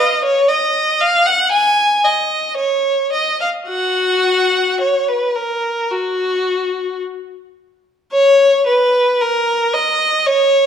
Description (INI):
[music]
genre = classical, baroque-style suite movement for unaccompanied violin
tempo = 52-59 BPM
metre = 4/4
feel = rubato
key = F# major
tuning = A4 = 439 Hz
[part]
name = clear violin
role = solo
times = 0.0-10.7 s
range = F#4 to G#5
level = -13 LUFS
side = equal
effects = none
[sound]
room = moderate recital hall reverb, RT60 1.3 s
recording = dark, warm production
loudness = -13 LUFS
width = side -8 dB against mid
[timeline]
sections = 0.0-8.1 A section; 8.1-10.7 B section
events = none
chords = none